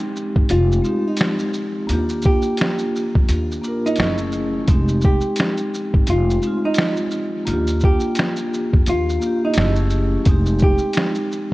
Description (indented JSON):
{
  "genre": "lo-fi hip hop",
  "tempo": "86 BPM",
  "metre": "4/4",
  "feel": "swing 59% on 16ths",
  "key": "unclear",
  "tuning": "A4 = 440 Hz",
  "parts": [
    { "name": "vintage hollow-body jazz guitar", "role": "melody", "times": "0.0-11.5 s", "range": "Eb4 to G4", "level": "-24 LUFS", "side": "right 1 dB", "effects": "analog delay" },
    { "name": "vibraphone with soft mallets", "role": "accompaniment", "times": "0.0-11.5 s", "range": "Ab3 to Bb4", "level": "-22 LUFS", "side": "equal", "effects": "cassette tape" },
    { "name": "lo-fi sampler-style drum kit", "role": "drums", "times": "0.2-11.5 s", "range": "finger snaps, hi-hat, kick drum, shaker, snare drum", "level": "-20 LUFS", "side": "equal", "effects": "none" },
    { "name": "upright bass", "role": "bass", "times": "0.4-10.7 s", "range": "F1 to F2", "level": "-21 LUFS", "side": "equal", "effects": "none" }
  ],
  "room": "light reverb",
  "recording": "worn, warbling old tape, cassette tape, warbly pitch drift",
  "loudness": "-16 LUFS",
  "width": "side -19 dB against mid",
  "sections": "0.0-11.5 A section",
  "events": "none",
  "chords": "0.0 Fm9; 1.9 Ebmaj9; 4.0 Gbm9; 4.7 Fm9; 7.5 Ebmaj9; 9.6 Gbm9; 10.3 Fm9",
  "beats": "0.49 1.19 | 1.89 2.58 3.28 3.98 | 4.68 5.38 6.07 6.77 | 7.47 8.17 8.86 9.56 | 10.26 10.96"
}